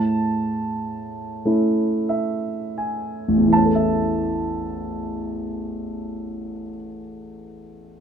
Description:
classical, lyrical solo piano; 26-39 BPM (dotted quarters); 6/8; rubato; A major; A4 = 440 Hz
warm baby grand piano; solo; 0.0-8.0 s; A1 to A5; -21 LUFS; right 1 dB
light reverb; dark, warm production; -20 LUFS; side -7 dB against mid
0.0-3.5 A section; 3.5-8.0 B section
slowing down 0.0-3.5; grand piano fill 1.5-3.5
0.0 A

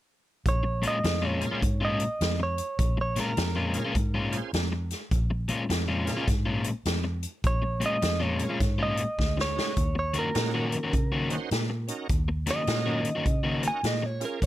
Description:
electric blues shuffle; 103 BPM; 4/4; swing 64% on 8ths; Bb minor; A4 = 436 Hz
clean electric guitar; melody; 0.5-14.5 s; Bb4 to Ab5; -31 LUFS; right 2 dB
vintage muted fingered electric bass; bass; 0.5-14.5 s; Bb1 to Db3; -30 LUFS; equal
swinging big-band drum kit; drums; 0.5-14.5 s; hi-hat, kick drum, snare drum; -29 LUFS; equal
crunchy overdriven guitar; riff; 0.6-14.1 s; Bb2 to Gb4; -29 LUFS; left 3 dB
bright tonewheel organ; accompaniment; 1.4-14.4 s; Db4 to C5; -36 LUFS; right 5 dB; slow rotary speaker, overdrive, chorus vibrato
little or no reverb; -25 LUFS; side -14 dB against mid
0.5-14.5 A section
drum fill 9.2-9.8
0.5 Bbm7; 9.8 Ebm7

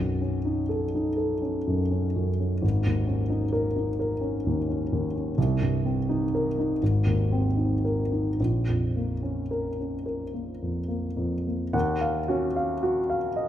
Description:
classical, impressionist solo piano; 35-45 BPM (dotted quarters); 6/8; rubato; A4 = 438 Hz
warm concert grand piano; solo; 0.0-13.5 s; Ab1 to Gb5; -24 LUFS; equal
moderate scoring stage reverb, RT60 1.7 s; -24 LUFS; side -11 dB against mid
0.0-11.7 A section; 11.7-13.5 B section
0.0 B9; 2.6 Absus24; 5.4 Cm7; 6.8 Abadd9; 8.4 Bbm; 11.7 Ebm9

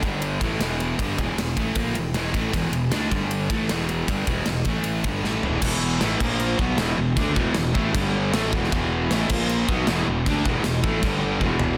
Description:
hard rock; 156 BPM; 4/4; straight; E minor; A4 = 440 Hz
overdriven semi-hollow guitar; riff; 0.0-11.8 s; E2 to D4; -30 LUFS; equal; spring reverb
scooped high-gain guitar; riff; 0.0-11.8 s; E2 to D4; -30 LUFS; equal; distortion
fuzz fingered electric bass; bass; 0.0-11.8 s; E1 to D2; -31 LUFS; equal; overdrive
gated 80s drum kit; drums; 0.0-11.7 s; crash cymbal, kick drum, ride cymbal, snare drum, toms; -28 LUFS; equal
mellow tonewheel organ; sustained chords; 5.6-11.8 s; E3 to F#5; -38 LUFS; equal
high-gain distorted guitar; riff; 5.6-11.8 s; E2 to D4; -32 LUFS; equal; distortion
light reverb, small room ambience; dense, heavily limited modern master; -23 LUFS; mono
0.0-5.6 A section; 5.6-11.8 B section
drum fill 5.2-5.6, 11.4-11.8
0.0 G5; 0.4 Em; 3.1 G5; 3.5 Em; 4.7 A5; 5.1 Em; 5.6 E5; 6.2 A#5; 6.6 E5; 7.9 G5; 8.3 E5; 9.3 A#5; 9.7 E5; 11.0 G5

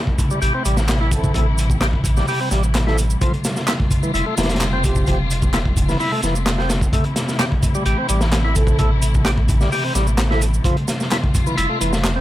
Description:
breakbeat, breaks; 129 BPM; 4/4; straight; A minor; A4 = 437 Hz
warm studio string section; sustained chords; 0.0-12.2 s; C3 to F4; -25 LUFS; left 1 dB; vintage 12-bit sampler grit, sidechain pumping
crunchy breakbeat drum kit; drums; 0.1-12.2 s; hi-hat, kick drum, snare drum; -20 LUFS; equal
electronic shaker and handclaps; drums; 0.2-12.1 s; -27 LUFS; right 2 dB
tonewheel organ; riff; 0.3-12.2 s; E3 to G4; -24 LUFS; equal; overdrive, slow rotary speaker, tube saturation, low-pass filter, digital delay
saturated sub bass; bass; 0.4-12.2 s; F1 to A1; -20 LUFS; equal
mellow brass ensemble; stabs; 1.1-5.2, 8.6-10.4 s; A3 to A4; -29 LUFS; right 4 dB; digital delay
little or no reverb; -16 LUFS; side -14 dB against mid
0.0-12.2 A section
0.0 Am; 3.2 Fadd9; 6.9 Am; 10.7 Fadd9

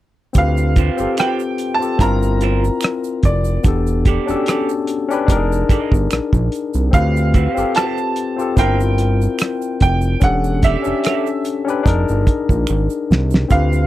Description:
R&B, neo-soul; 73 BPM; 4/4; swing 54% on 16ths; A4 = 440 Hz
barky tine electric piano; accompaniment; 0.3-13.9 s; B3 to B4; -20 LUFS; left 5 dB; overdrive
tube shaker and finger snaps; percussion; 0.3-13.9 s; -34 LUFS; right 10 dB
clear grand piano; melody; 0.4-13.9 s; D5 to Bb5; -22 LUFS; right 3 dB; tape echo
fat analog bass; bass; 0.4-13.9 s; E1 to D2; -17 LUFS; right 1 dB
cloth-damped thuddy drum kit; drums; 0.4-13.7 s; hi-hat, kick drum, rim click, snare drum; -15 LUFS; right 1 dB
electric guitar through a small old amp; second line; 0.8-11.3 s; F4 to Eb5; -24 LUFS; right 11 dB
little or no reverb; dry, close 1970s-style studio recording; -14 LUFS; side -14 dB against mid
0.4-13.9 A section
drum fill 12.7-13.5
0.4 Dm7; 2.0 Gm7; 3.6 Em11; 5.3 Fm11; 6.9 Dm7; 8.6 Gm7; 10.2 Em7; 11.9 Fm11

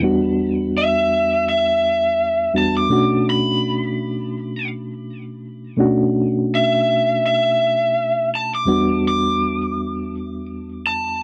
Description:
blues; 83 BPM; 4/4; straight; B minor; A4 = 444 Hz
reed electric piano; accompaniment; 0.0-11.2 s; E2 to F#4; -23 LUFS; equal; overdrive, fast tremolo
lead guitar through a small cranked amp; melody; 0.8-11.2 s; E5 to D6; -21 LUFS; equal; overdrive
light reverb; dry, close 1970s-style studio recording; -19 LUFS; mono
0.0-11.2 A section
lead electric guitar solo 0.0-11.2
0.0 Em7; 2.9 Bm7; 8.7 Em7

